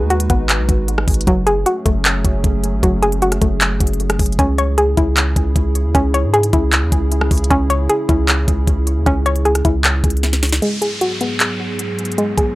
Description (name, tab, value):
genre	hip hop, trap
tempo	154 BPM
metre	4/4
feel	half-time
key	unclear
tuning	A4 = 440 Hz
part	dark analog pad	sustained chords	0.0-12.6 s	G#2 to B4	-24 LUFS	right 1 dB	chorus, low-pass filter
part	hollow square pluck	arpeggios	0.0-12.6 s	F#3 to C#5	-18 LUFS	equal	chorus, low-pass filter, tape echo
part	long sustained 808-style bass	bass	0.0-10.6 s	F#1 to G#2	-18 LUFS	equal	none
part	trap drum kit	drums	0.1-12.5 s	handclaps, hi-hat, kick drum, rim click, snare drum	-17 LUFS	equal	none
part	downlifter	sound effects	10.6-12.6 s	none	-26 LUFS	equal	none
room	little or no reverb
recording	dry, gritty hardware recording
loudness	-14 LUFS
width	side -18 dB against mid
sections	0.0-10.6 A section; 10.6-12.6 B section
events	drum fill 10.2-10.6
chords	0.0 G#m7; 1.3 F#madd9; 4.4 C#m; 10.6 G#m7